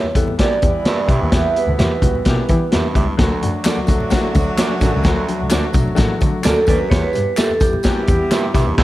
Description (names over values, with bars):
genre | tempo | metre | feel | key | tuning
uptempo 1960s-style soul | 129 BPM | 4/4 | straight | unclear | A4 = 441 Hz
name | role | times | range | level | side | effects
vibraphone with soft mallets | melody | 0.0-2.9, 6.5-8.8 s | G4 to E5 | -21 LUFS | right 3 dB | none
dark baby grand piano | accompaniment | 0.0-8.8 s | F#3 to A4 | -23 LUFS | left 4 dB | none
electric guitar through a small old amp | stabs | 0.0-8.8 s | F#4 to E5 | -26 LUFS | right 5 dB | none
warm double bass | bass | 0.0-8.8 s | E1 to E3 | -21 LUFS | equal | none
vintage drum kit | drums | 0.2-8.8 s | crash cymbal, hi-hat, kick drum, snare drum | -18 LUFS | equal | none
congas | percussion | 0.3-8.7 s | none | -30 LUFS | right 1 dB | none
warm horn section | second line | 0.4-8.8 s | E3 to G4 | -27 LUFS | right 2 dB | none
breathy baritone saxophone | riff | 0.4-8.8 s | D2 to G2 | -27 LUFS | right 4 dB | none
handclaps and tambourine | percussion | 3.6-8.7 s | none | -31 LUFS | left 1 dB | none
room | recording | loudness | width
light reverb, small room ambience | dark, warm production | -14 LUFS | side -16 dB against mid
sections
0.0-8.8 A section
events
none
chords
0.0 Em; 3.2 D; 6.9 Em